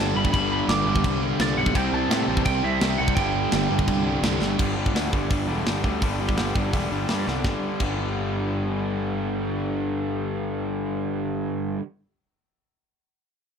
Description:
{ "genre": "punk rock", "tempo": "168 BPM", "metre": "4/4", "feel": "straight", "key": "G major", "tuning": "A4 = 440 Hz", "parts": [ { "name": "lightly driven lead guitar", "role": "melody", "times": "0.0-4.2 s", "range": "D5 to D6", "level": "-28 LUFS", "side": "right 2 dB", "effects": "tape echo" }, { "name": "distorted electric guitar", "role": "riff", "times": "0.0-11.8 s", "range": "G2 to E4", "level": "-29 LUFS", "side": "right 14 dB", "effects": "distortion" }, { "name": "overdriven electric guitar", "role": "riff", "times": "0.0-11.8 s", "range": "G2 to C4", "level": "-28 LUFS", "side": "left 13 dB", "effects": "none" }, { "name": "thick fuzz guitar", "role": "riff", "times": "0.0-4.6 s", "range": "G2 to C4", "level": "-30 LUFS", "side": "right 1 dB", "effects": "distortion" }, { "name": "fuzz picked electric bass", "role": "bass", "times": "0.0-11.8 s", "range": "E1 to A2", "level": "-28 LUFS", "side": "right 1 dB", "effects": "overdrive" }, { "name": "tight metal drum kit", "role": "drums", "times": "0.2-7.9 s", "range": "crash cymbal, hi-hat, kick drum, snare drum", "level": "-26 LUFS", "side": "right 1 dB", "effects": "none" } ], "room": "light reverb", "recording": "none", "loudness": "-22 LUFS", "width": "side -7 dB against mid", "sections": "0.0-4.6 A section; 4.6-7.4 B section; 7.4-10.3 C section", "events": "drum fill 4.4, 7.3", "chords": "0.0 G; 1.8 C; 3.2 G", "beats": "| 0.33 0.69 1.04 1.40 | 1.75 2.11 2.46 2.82 | 3.17 3.53 3.88 4.24 | 4.59 4.95 5.30 5.66 | 6.02 6.38 6.73 7.09 | 7.45 7.80 8.16 8.52 | 8.87 9.23 9.59 9.95" }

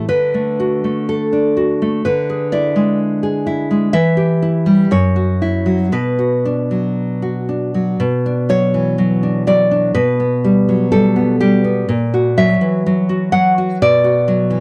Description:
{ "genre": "romantic piece for solo classical guitar", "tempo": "57-64 BPM", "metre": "2/4", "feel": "rubato", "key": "B minor from 4.0 s", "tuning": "A4 = 440 Hz", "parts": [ { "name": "nylon-string guitar", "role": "solo", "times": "0.0-14.6 s", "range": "F#2 to F#5", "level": "-16 LUFS", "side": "equal", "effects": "none" } ], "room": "small room ambience", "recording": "dry, close 1970s-style studio recording", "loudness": "-16 LUFS", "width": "mono", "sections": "0.0-8.0 A section; 8.0-14.6 B section", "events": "none", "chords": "0.1 D; 2.1 E7/D; 4.0 Em; 4.9 F#5; 6.0 Bm; 10.0 Gmaj9/B; 11.9 F#7/A#; 13.8 Bm", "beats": "| 0.10 1.10 | 2.06 3.01 | 3.95 4.93 | 5.95 6.98 | 8.01 9.01 | 9.97 10.93 | 11.90 12.86 | 13.82" }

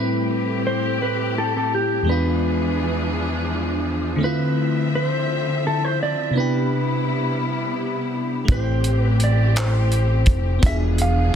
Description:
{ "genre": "slow six-eight R&B", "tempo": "56 BPM (dotted quarters)", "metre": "6/8", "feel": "straight", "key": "A minor", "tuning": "A4 = 442 Hz", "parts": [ { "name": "mellow electric guitar", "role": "melody", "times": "0.0-11.4 s", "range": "G4 to F5", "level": "-25 LUFS", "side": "right 1 dB", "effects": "none" }, { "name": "FM electric piano with soft pad layer", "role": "accompaniment", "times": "0.0-11.4 s", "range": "E2 to G#4", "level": "-23 LUFS", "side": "left 1 dB", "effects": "chorus" }, { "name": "muted studio string section", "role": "sustained chords", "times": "0.0-11.4 s", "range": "C3 to E5", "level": "-27 LUFS", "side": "left 1 dB", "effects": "none" }, { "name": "fat analog bass", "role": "bass", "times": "8.5-11.3 s", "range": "E1 to A1", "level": "-18 LUFS", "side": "equal", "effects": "none" }, { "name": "cloth-damped thuddy drum kit", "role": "drums", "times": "8.5-11.2 s", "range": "handclaps, hi-hat, kick drum", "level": "-19 LUFS", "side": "equal", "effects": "none" } ], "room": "light reverb, small room ambience", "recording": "dense, heavily limited modern master", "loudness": "-18 LUFS", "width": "side -8 dB against mid", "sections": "0.0-11.4 A section", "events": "none", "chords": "0.0 Am9; 2.1 E7b9; 4.2 Dm9; 6.3 Cmaj7; 8.5 Am7; 10.6 E7b9", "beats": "0.98 | 2.06 3.13 | 4.20 5.27 | 6.34 7.41 | 8.48 9.56 | 10.63" }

